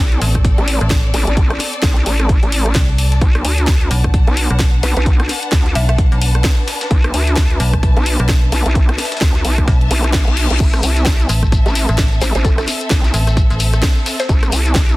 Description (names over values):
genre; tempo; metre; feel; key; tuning
bass house; 130 BPM; 4/4; swing 59% on 16ths; A dorian; A4 = 439 Hz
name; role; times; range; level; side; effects
vowel-sweep wobble bass; bass; 0.0-15.0 s; A1 to D2; -16 LUFS; equal; chorus, tube saturation, sidechain pumping
warm studio string section; texture; 0.0-15.0 s; C4 to A5; -25 LUFS; left 2 dB; sidechain pumping
garage drum kit; drums; 0.1-15.0 s; crash cymbal, hi-hat, rim click, snare drum; -21 LUFS; left 1 dB; none
metallic FM bass; bass; 0.2-13.8 s; A1 to C2; -15 LUFS; equal; overdrive, sidechain pumping
breakbeat sampler-style drum kit; drums; 0.2-14.9 s; hi-hat, snare drum; -31 LUFS; left 1 dB; none
electronic kick drum; drums; 0.3-14.9 s; none; -14 LUFS; equal; none
mallet-like synth pluck; melody; 4.8-6.0, 12.2-14.5 s; A4 to E5; -24 LUFS; equal; chorus, digital delay
reverse cymbal; sound effects; 9.9-10.6 s; none; -25 LUFS; left 9 dB; none
shekere; percussion; 10.6-15.0 s; none; -28 LUFS; left 3 dB; none
room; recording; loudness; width
digital ambience; dense, heavily limited modern master; -12 LUFS; side -19 dB against mid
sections
0.0-15.0 A section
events
reverse cymbal 9.9-10.6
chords
0.0 Am; 3.2 Bm7; 10.6 Am